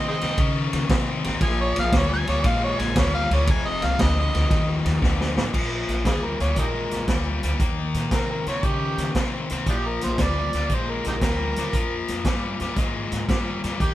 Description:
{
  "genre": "electric blues shuffle",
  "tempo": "116 BPM",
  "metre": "4/4",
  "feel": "swing 68% on 8ths",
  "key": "Bb mixolydian",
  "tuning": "A4 = 440 Hz",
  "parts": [
    { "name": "overdriven harmonica", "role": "melody", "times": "0.0-13.9 s", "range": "D4 to Ab5", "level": "-27 LUFS", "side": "right 1 dB", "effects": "none" },
    { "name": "cranked stack guitar", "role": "riff", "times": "0.0-13.9 s", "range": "F2 to Db4", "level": "-27 LUFS", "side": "left 4 dB", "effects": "overdrive" },
    { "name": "upright bass", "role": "bass", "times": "0.0-13.9 s", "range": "F1 to Db3", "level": "-27 LUFS", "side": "equal", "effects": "none" },
    { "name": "vintage drum kit", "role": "drums", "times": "0.2-13.9 s", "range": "crash cymbal, hi-hat, kick drum, ride cymbal, snare drum", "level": "-24 LUFS", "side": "right 1 dB", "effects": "none" }
  ],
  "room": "moderate studio reverb, RT60 0.6 s",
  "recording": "band playing live in one room",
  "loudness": "-21 LUFS",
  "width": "side -14 dB against mid",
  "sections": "0.0-5.5 A section; 5.5-13.9 B section",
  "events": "harmonica solo 0.0-5.5; drum fill 5.0-5.5",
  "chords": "0.0 Eb5; 1.4 Bb7; 3.5 F7(no3); 5.5 Bb7; 7.6 Eb7; 9.7 Bb7"
}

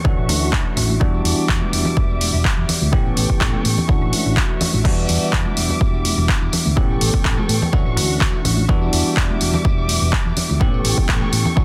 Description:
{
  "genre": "filtered disco house",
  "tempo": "125 BPM",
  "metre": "4/4",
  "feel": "swing 54% on 16ths",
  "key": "E dorian",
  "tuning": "A4 = 440 Hz",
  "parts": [
    { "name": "bell-like tine electric piano", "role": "accompaniment", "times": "0.0-11.6 s", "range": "E3 to G4", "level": "-26 LUFS", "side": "equal", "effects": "phaser, sidechain pumping, low-pass filter" },
    { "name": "rich chamber string section", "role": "sustained chords", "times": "0.0-11.6 s", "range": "G3 to D6", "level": "-30 LUFS", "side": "equal", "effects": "sidechain pumping, low-pass filter" },
    { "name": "hollow-body short-scale fingered electric bass", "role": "bass", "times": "0.0-11.6 s", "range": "E1 to A2", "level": "-24 LUFS", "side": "equal", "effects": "sidechain pumping, low-pass filter" },
    { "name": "electronic kick drum", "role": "drums", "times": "0.0-11.6 s", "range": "none", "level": "-21 LUFS", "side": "equal", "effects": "none" },
    { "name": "tambourine and congas", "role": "percussion", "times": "0.0-11.6 s", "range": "none", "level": "-28 LUFS", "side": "equal", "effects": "sidechain pumping on perc, low-pass filter on perc" },
    { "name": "punchy analog drum machine", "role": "drums", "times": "0.3-11.4 s", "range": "crash cymbal, handclaps, hi-hat", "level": "-24 LUFS", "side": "equal", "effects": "sidechain pumping on hats, sidechain pumping on cymbals" }
  ],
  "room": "little or no reverb",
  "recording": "dense, heavily limited modern master",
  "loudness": "-18 LUFS",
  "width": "mono",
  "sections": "0.0-11.6 A section",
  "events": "none",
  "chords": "0.0 Dmaj9; 1.0 Em7; 2.9 A7; 3.9 Dmaj9; 4.8 Em7; 6.8 A7; 7.7 Dmaj9; 8.7 Em7; 10.6 A7"
}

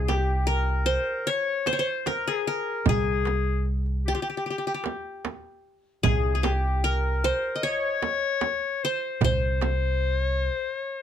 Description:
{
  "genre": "Turkish makam ensemble",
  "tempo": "76 BPM",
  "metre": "4/4",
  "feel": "straight",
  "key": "C makam kurdi",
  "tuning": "A4 = 440 Hz",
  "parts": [
    { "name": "qanun", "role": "melody", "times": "0.0-11.0 s", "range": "G4 to Eb5", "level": "-27 LUFS", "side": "left 2 dB", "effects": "none" },
    { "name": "bright clarinet", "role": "second line", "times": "0.0-11.0 s", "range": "F4 to Db5", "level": "-30 LUFS", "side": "left 6 dB", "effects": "none" },
    { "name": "upright bass", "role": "bass", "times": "0.0-10.5 s", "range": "C2", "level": "-25 LUFS", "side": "equal", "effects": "none" },
    { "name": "darbuka", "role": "percussion", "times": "0.1-10.3 s", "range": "none", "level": "-30 LUFS", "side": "right 5 dB", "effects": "none" },
    { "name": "frame drum", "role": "percussion", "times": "0.1-9.8 s", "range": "none", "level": "-29 LUFS", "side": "right 7 dB", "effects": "none" }
  ],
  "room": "little or no reverb",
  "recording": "close, detailed microphones",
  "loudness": "-23 LUFS",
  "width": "side -9 dB against mid",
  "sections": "0.0-11.0 A section",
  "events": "none",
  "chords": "none"
}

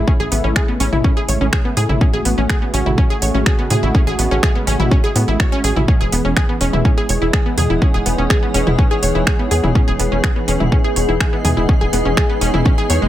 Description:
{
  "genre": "melodic techno",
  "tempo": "124 BPM",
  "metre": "4/4",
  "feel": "straight",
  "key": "unclear",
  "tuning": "A4 = 440 Hz",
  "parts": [
    { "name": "warm analog pad", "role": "sustained chords", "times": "0.0-13.1 s", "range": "C#3 to G#4", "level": "-22 LUFS", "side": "equal", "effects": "chorus, sidechain pumping" },
    { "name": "tight sequencer bass", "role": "bass", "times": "0.0-13.1 s", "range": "E1 to A2", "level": "-18 LUFS", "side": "equal", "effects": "sidechain pumping" },
    { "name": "impact and swell", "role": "sound effects", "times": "0.0-0.1, 12.8-13.1 s", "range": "none", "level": "-34 LUFS", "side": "right 1 dB", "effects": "none" },
    { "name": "wide unison pluck", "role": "arpeggios", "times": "0.1-13.1 s", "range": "G#3 to C#5", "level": "-21 LUFS", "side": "equal", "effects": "sidechain pumping, dub echo" },
    { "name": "electronic kick drum", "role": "drums", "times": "0.1-12.8 s", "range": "none", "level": "-15 LUFS", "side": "equal", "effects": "none" },
    { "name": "house drum kit", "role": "drums", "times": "0.3-13.0 s", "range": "finger snaps, hi-hat, toms", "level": "-22 LUFS", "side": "equal", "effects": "none" },
    { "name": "granular cloud pad", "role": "texture", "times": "7.3-13.1 s", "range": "D#4 to G#5", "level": "-24 LUFS", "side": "left 1 dB", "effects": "built-in reverb, sidechain pumping" }
  ],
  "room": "digital ambience",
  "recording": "none",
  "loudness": "-13 LUFS",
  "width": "side -13 dB against mid",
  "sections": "0.0-13.1 A section",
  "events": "none",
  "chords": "0.0 Amaj7; 5.9 E"
}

